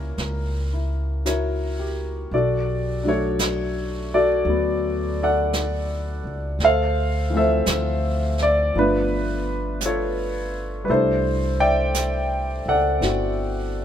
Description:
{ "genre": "jazz ballad", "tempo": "56 BPM", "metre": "4/4", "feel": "swing 67% on 8ths", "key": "B minor", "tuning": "A4 = 440 Hz", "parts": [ { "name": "warm concert grand piano", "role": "accompaniment", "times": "0.0-13.8 s", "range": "Fb3 to G5", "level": "-22 LUFS", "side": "left 1 dB", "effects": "none" }, { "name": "upright bass", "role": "bass", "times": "0.0-13.8 s", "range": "G1 to D2", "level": "-26 LUFS", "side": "equal", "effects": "none" }, { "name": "jazz brush drum kit", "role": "drums", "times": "0.2-13.8 s", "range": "brushed snare drum, hi-hat, snare drum", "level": "-30 LUFS", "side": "right 3 dB", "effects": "none" } ], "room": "little or no reverb", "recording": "minimal, uncompressed stereo recording", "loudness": "-20 LUFS", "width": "side -9 dB against mid", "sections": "0.0-2.3 A section; 2.3-13.8 B section", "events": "none", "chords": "0.0 Gb7b9; 2.3 Bm9; 6.6 Dm9; 8.7 G9; 10.9 C69" }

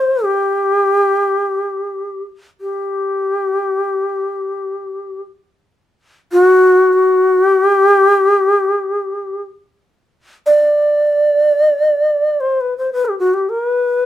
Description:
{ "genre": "japanese traditional", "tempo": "free time", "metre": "none", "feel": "none", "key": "G ryukyu", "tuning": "A4 = 440 Hz", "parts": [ { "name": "bright long shakuhachi", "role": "solo", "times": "0.0-14.1 s", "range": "F#4 to D5", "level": "-12 LUFS", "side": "equal", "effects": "none" } ], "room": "moderate studio reverb, RT60 0.6 s", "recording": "minimal, uncompressed stereo recording", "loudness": "-12 LUFS", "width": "side -12 dB against mid", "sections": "0.0-9.6 A section; 9.6-14.1 A section", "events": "none", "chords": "none" }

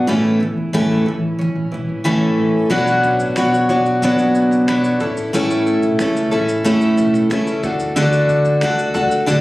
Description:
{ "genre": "acoustic pop", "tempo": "91 BPM", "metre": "4/4", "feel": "straight", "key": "unclear", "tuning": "A4 = 440 Hz", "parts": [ { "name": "picked steel-string acoustic guitar", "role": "accompaniment", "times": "0.0-9.4 s", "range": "A2 to C#5", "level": "-14 LUFS", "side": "equal", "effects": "none" }, { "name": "twelve-string electric guitar", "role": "arpeggios", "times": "0.0-9.4 s", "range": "E3 to F#4", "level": "-27 LUFS", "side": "right 3 dB", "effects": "tape echo" }, { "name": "upright bass", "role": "bass", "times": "0.1-9.4 s", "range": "F#1 to E2", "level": "-29 LUFS", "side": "equal", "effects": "none" }, { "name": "dusty soul sampler-style drum kit", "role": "drums", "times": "2.7-9.4 s", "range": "crash cymbal, finger snaps, kick drum, shaker", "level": "-31 LUFS", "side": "equal", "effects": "none" } ], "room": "light reverb", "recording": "recorded on a phone in the room, club reverb", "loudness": "-14 LUFS", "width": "side -18 dB against mid", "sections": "0.0-2.7 A section; 2.7-9.4 B section", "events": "none", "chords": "0.1 A; 2.7 Bmadd9; 5.0 A; 7.6 D" }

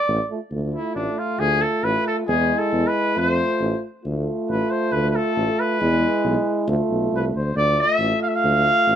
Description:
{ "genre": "balkan folk, Balkan brass band", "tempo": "136 BPM", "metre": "2/4", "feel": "swing 56% on 16ths", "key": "D dorian sharp4", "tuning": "A4 = 438 Hz", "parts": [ { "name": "mellow trumpet", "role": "melody", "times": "0.0-9.0 s", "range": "D4 to F5", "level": "-21 LUFS", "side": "equal", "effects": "none" }, { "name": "mellow tuba", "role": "bass", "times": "0.1-9.0 s", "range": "A1 to F2", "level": "-24 LUFS", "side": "equal", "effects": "none" }, { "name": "clear euphonium", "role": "accompaniment", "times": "0.3-9.0 s", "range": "G#3 to A3", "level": "-25 LUFS", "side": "right 6 dB", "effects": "none" }, { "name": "mellow French horn", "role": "accompaniment", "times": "0.3-9.0 s", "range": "E4 to F4", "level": "-27 LUFS", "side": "left 5 dB", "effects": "none" } ], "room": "light reverb", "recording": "none", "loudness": "-19 LUFS", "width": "side -9 dB against mid", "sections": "0.5-9.0 A section", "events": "trumpet solo 0.5-9.0", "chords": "0.0 Dm; 2.3 E; 3.2 F; 4.0 Dm; 5.8 E; 6.7 Dm" }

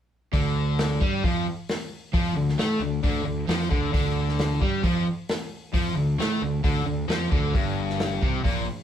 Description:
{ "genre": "classic rock", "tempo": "133 BPM", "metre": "4/4", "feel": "straight", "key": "unclear", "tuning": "A4 = 435 Hz", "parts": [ { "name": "distorted electric guitar", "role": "riff", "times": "0.3-8.7 s", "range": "G2 to A3", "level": "-28 LUFS", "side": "left 7 dB", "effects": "overdrive" }, { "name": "overdriven semi-hollow guitar", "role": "riff", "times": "0.3-8.7 s", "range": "G2 to A3", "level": "-28 LUFS", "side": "right 7 dB", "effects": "none" }, { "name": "fuzz fingered electric bass", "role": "bass", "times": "0.3-8.7 s", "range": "G1 to A2", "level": "-30 LUFS", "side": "equal", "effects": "overdrive" }, { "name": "vintage drum kit", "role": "drums", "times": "0.3-8.6 s", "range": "hi-hat, kick drum, snare drum", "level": "-27 LUFS", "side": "equal", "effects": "none" } ], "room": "moderate studio reverb, RT60 0.6 s", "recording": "band playing live in one room, faint mains hum", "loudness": "-22 LUFS", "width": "side -9 dB against mid", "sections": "0.3-8.8 A section", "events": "none", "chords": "0.3 D5; 7.5 G5" }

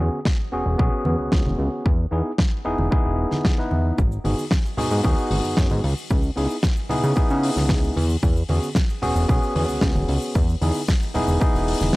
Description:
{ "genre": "nu-disco, nu disco", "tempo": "113 BPM", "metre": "4/4", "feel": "straight", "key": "unclear", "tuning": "A4 = 439 Hz", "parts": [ { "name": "overdriven tine electric piano", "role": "accompaniment", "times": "0.0-12.0 s", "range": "B3 to B4", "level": "-25 LUFS", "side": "equal", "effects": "sidechain pumping, low-pass filter, tape echo" }, { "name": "fat analog bass", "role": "bass", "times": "0.0-11.9 s", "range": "E1 to C#3", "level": "-22 LUFS", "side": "equal", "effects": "none" }, { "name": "damped 70s drum kit", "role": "drums", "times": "0.3-12.0 s", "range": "hi-hat, snare drum", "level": "-28 LUFS", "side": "left 1 dB", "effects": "none" }, { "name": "electronic kick drum", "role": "drums", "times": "0.3-11.5 s", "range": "none", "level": "-20 LUFS", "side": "equal", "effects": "overdrive" }, { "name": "congas and cabasa", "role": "percussion", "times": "1.1-11.9 s", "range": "none", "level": "-31 LUFS", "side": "right 1 dB", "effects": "none" } ], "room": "small room ambience", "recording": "dry, gritty hardware recording, cassette tape", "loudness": "-19 LUFS", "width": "side -20 dB against mid", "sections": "0.0-12.0 A section", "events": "none", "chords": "0.0 E6; 1.9 Emaj7; 4.0 G#m7; 5.8 C#m7; 8.0 E6; 10.4 Emaj7" }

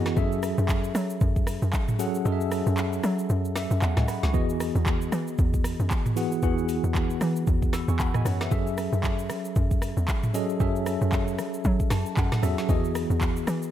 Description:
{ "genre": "amapiano", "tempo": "115 BPM", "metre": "4/4", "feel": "swing 58% on 16ths", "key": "unclear", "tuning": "A4 = 440 Hz", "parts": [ { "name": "tine electric piano", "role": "accompaniment", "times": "0.0-13.7 s", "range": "E3 to E6", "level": "-28 LUFS", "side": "equal", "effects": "medium stereo tremolo" }, { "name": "tight log drum bass", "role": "bass", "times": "0.0-13.7 s", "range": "C#2 to F#3", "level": "-27 LUFS", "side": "equal", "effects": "none" }, { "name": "afro-pop drum kit", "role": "drums", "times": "0.1-13.7 s", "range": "handclaps, hi-hat, kick drum, rim click, shaker, snare drum, toms", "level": "-27 LUFS", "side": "equal", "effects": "none" } ], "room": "light reverb, digital ambience", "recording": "none", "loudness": "-23 LUFS", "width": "side -11 dB against mid", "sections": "0.0-13.7 A section", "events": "kick muted 2.3-4.3; tine electric piano fill 3.3-4.3, 11.6-12.7", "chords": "0.2 F#m9; 4.3 Emaj9; 8.5 F#m9; 12.7 Emaj9" }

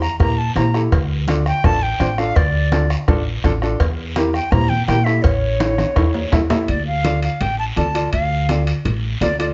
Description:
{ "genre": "latin, cumbia", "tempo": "166 BPM", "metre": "4/4", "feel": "straight", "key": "D minor", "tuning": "A4 = 439 Hz", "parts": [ { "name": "breathy silver concert flute", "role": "melody", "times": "0.0-9.5 s", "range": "C#5 to Bb5", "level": "-25 LUFS", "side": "equal", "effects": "none" }, { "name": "upright bass", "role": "bass", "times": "0.0-9.5 s", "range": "A1 to Bb2", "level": "-22 LUFS", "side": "equal", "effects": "none" }, { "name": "bombo", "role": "percussion", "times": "0.0-6.7 s", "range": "none", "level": "-23 LUFS", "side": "equal", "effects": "none" }, { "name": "guiro", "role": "percussion", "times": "0.0-9.5 s", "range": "none", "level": "-37 LUFS", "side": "equal", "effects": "none" }, { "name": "warm upright piano", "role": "accompaniment", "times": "0.2-9.5 s", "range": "D4 to E5", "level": "-25 LUFS", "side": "equal", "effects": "none" }, { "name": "congas", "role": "percussion", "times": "0.2-9.4 s", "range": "none", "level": "-28 LUFS", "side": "equal", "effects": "none" }, { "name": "cowbell and timbales", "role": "percussion", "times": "0.2-9.5 s", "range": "none", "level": "-30 LUFS", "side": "equal", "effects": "none" } ], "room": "light reverb", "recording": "nothing above 7.7 kHz", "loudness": "-18 LUFS", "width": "mono", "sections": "0.0-6.7 A section; 6.7-9.5 B section", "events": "drum fill 5.6-6.7", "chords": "0.0 Edim; 0.9 Dm; 3.8 Edim; 5.2 A; 6.7 Dm" }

